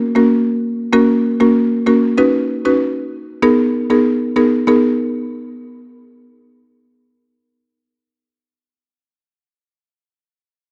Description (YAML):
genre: afrobeats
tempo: 96 BPM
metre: 4/4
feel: straight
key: G# minor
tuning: A4 = 439 Hz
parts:
  - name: buzzing marimba with medium mallets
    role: solo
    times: 0.2-8.6 s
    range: A#3 to B4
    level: -15 LUFS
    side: equal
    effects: none
room: light reverb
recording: nothing above 10.4 kHz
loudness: -15 LUFS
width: mono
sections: 0.0-4.7 A section; 4.7-7.2 B section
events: none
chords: 0.0 F#; 2.2 Badd9; 3.4 G#madd9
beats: 0.30 0.93 1.55 | 2.18 2.80 3.43 4.05 | 4.68 5.30 5.93 6.55